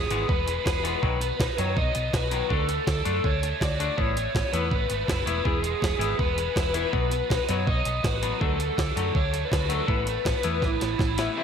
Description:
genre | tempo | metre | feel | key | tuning
indie rock | 162 BPM | 4/4 | straight | unclear | A4 = 440 Hz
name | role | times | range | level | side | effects
lead guitar through a small cranked amp | melody | 0.0-11.4 s | E4 to E5 | -28 LUFS | left 2 dB | overdrive, slapback echo
high-gain distorted guitar | riff | 0.0-11.4 s | E2 to G#4 | -32 LUFS | right 9 dB | distortion, ensemble chorus, slapback echo
overdriven electric guitar | riff | 0.0-11.4 s | B2 to E4 | -33 LUFS | left 8 dB | slapback echo
hollow-body short-scale fingered electric bass | bass | 0.0-11.3 s | E1 to F#2 | -30 LUFS | right 1 dB | none
jungle sampler-style drum kit | drums | 0.1-11.3 s | hi-hat, kick drum, snare drum | -28 LUFS | right 1 dB | none
room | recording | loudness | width
moderate lush hall reverb, RT60 1.8 s, digital ambience | big arena sound | -23 LUFS | side -7 dB against mid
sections
0.0-11.4 A section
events
drum fill 10.6-11.4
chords
0.0 E; 1.0 B; 2.5 D; 4.0 Asus2; 5.5 E; 6.9 B; 8.4 D; 9.9 Asus2

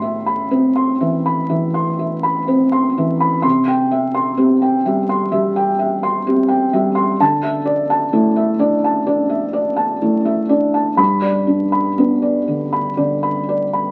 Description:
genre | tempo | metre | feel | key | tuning
neoclassical minimalist piano | 59-65 BPM | 4/4 | rubato | G major | A4 = 440 Hz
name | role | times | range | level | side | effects
felt-muted upright piano | solo | 0.0-13.9 s | G2 to C6 | -17 LUFS | equal | none
room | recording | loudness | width
moderate studio reverb, RT60 0.9 s | very old 78 rpm record, vinyl crackle | -17 LUFS | mono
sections
0.0-13.9 A section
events
none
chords
0.0 Amadd9; 3.4 C; 7.2 Dsus2; 11.0 G

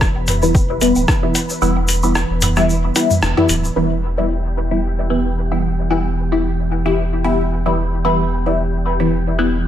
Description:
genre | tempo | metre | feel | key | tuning
dub techno | 112 BPM | 4/4 | swing 55% on 16ths | E minor | A4 = 439 Hz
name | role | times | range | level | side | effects
warbly tape-like pad | sustained chords | 0.0-9.7 s | E3 to B4 | -25 LUFS | right 2 dB | chorus, built-in reverb, sidechain pumping
filtered dub chord stab | stabs | 0.0-9.6 s | E3 to E4 | -18 LUFS | left 1 dB | phaser, sidechain pumping, dub echo
warm sub bass | bass | 0.0-9.7 s | D1 to E1 | -20 LUFS | equal | sidechain pumping
electronic kick drum | drums | 0.0-1.2 s | none | -17 LUFS | equal | overdrive
lo-fi sampler-style drum kit | drums | 0.0-3.6 s | hi-hat, rim click | -21 LUFS | left 1 dB | none
egg shaker | percussion | 0.0-3.7 s | none | -24 LUFS | left 2 dB | none
wind-like tuned noise texture | texture | 0.0-9.7 s | G4 to B4 | -31 LUFS | left 1 dB | built-in reverb, sidechain pumping
electronic woodblock and toms | percussion | 0.2-3.5 s | none | -23 LUFS | right 1 dB | overdrive, sidechain pumping on perc, sidechain pumping on toms
room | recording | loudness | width
light reverb | none | -15 LUFS | side -10 dB against mid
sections
0.0-3.8 A section; 3.8-9.7 B section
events
filter sweep on synth stab 0.0-3.8; kick drops out 1.6-3.8; band accent 3.2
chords
0.0 Em

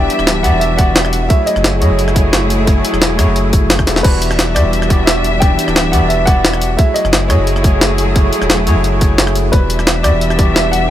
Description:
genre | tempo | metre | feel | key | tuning
liquid drum and bass | 175 BPM | 4/4 | straight | E dorian | A4 = 439 Hz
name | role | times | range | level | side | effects
warm grand piano | melody | 0.0-10.9 s | B4 to G5 | -20 LUFS | equal | ping-pong delay
overdriven tine electric piano | accompaniment | 0.0-10.9 s | A3 to E5 | -19 LUFS | left 1 dB | wide subtle chorus, dub echo
warm symphonic string section | sustained chords | 0.0-10.9 s | E3 to E5 | -19 LUFS | equal | none
warm sub bass | bass | 0.0-10.9 s | D1 to F#2 | -16 LUFS | equal | none
jungle sampler-style drum kit | drums | 0.1-10.8 s | crash cymbal, hi-hat, rim click, snare drum | -16 LUFS | equal | none
electronic kick drum | drums | 0.8-10.5 s | none | -12 LUFS | equal | overdrive
room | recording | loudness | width
little or no reverb | none | -10 LUFS | side -12 dB against mid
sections
0.0-10.9 A section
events
drum fill 3.9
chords
0.0 Em9; 1.3 F#m9; 4.0 Em9; 6.8 F#m9; 9.5 Em9

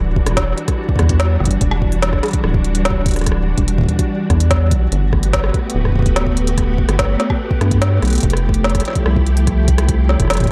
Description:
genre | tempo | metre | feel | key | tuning
IDM | 145 BPM | 4/4 | straight | E minor | A4 = 440 Hz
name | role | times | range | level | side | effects
soft string machine | sustained chords | 0.0-10.5 s | E3 to G4 | -24 LUFS | equal | ensemble chorus, vintage 12-bit sampler grit
rubbery square bass | bass | 0.0-10.5 s | D1 to G2 | -18 LUFS | equal | none
electronic kick drum | drums | 0.2-10.5 s | none | -21 LUFS | equal | none
organic electronic drum kit | drums | 0.3-10.5 s | hi-hat, rim click, snare drum | -24 LUFS | equal | analog delay
room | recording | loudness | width
light reverb, digital ambience | echo-heavy mix | -16 LUFS | mono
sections
0.0-10.5 A section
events
none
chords
0.0 Em9; 4.9 Gmaj9; 8.2 Fmaj9

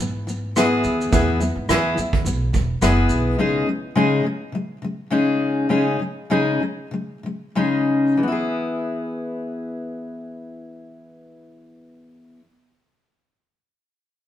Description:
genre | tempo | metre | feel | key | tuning
acoustic pop | 90-106 BPM | 4/4 | swing 55% on 16ths | E major | A4 = 440 Hz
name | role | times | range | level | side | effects
fingerpicked steel-string acoustic guitar | accompaniment | 0.0-12.4 s | C#3 to G#4 | -20 LUFS | left 2 dB | none
upright bass | bass | 0.0-3.3 s | E1 to G#2 | -24 LUFS | equal | none
soft brush drum kit | drums | 0.0-3.2 s | kick drum, rim click, shaker | -23 LUFS | right 2 dB | none
room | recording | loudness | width
moderate stone room reverb, RT60 1.3 s | band playing live in one room | -19 LUFS | side -11 dB against mid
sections
0.0-8.2 A section; 8.2-10.9 B section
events
slowing down 3.4-8.2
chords
0.0 E; 3.4 C#sus2; 8.2 E

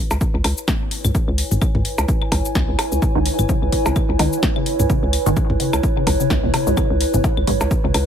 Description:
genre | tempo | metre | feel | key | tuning
minimal techno | 128 BPM | 4/4 | swing 57% on 16ths | C# minor | A4 = 438 Hz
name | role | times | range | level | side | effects
warbly tape-like pad | texture | 0.0-8.1 s | E4 to G#5 | -23 LUFS | right 2 dB | chorus, built-in reverb, sidechain pumping
hollow knocking FM bass | bass | 0.1-8.0 s | G#1 to C#2 | -20 LUFS | equal | sidechain pumping
house drum kit | drums | 0.1-8.1 s | hi-hat, shaker, snare drum | -26 LUFS | left 2 dB | none
electronic percussion blips, claves and toms | percussion | 0.1-8.1 s | none | -24 LUFS | left 1 dB | ping-pong delay
electronic kick drum | drums | 0.2-7.8 s | none | -20 LUFS | equal | none
resonant blip pluck | riff | 3.2-7.9 s | G#2 to E3 | -24 LUFS | left 1 dB | phaser, lush chorus, sidechain pumping, ping-pong delay
room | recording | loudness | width
digital ambience | none | -16 LUFS | side -8 dB against mid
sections
0.0-8.1 A section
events
none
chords
0.0 C#m7

